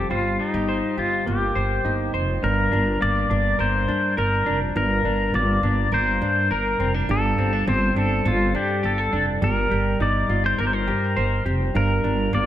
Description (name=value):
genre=dream pop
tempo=103 BPM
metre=4/4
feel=straight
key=G minor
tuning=A4 = 440 Hz
part: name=pedal steel guitar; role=melody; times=0.0-12.5 s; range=Eb4 to D5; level=-23 LUFS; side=left 1 dB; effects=digital delay
part: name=semi-hollow electric guitar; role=arpeggios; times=0.0-12.5 s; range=G2 to C5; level=-25 LUFS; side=equal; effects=wide subtle chorus, digital delay
part: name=upright bass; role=bass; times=0.0-12.5 s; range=F1 to G2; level=-24 LUFS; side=equal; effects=none
room=moderate lush hall reverb, RT60 1.9 s, small room ambience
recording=none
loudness=-19 LUFS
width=side -12 dB against mid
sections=0.0-2.4 A section; 2.4-12.5 B section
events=none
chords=0.1 Cm7/G; 2.4 Gm; 7.1 D7(no3)/G; 9.4 Cm7/G; 11.8 Gm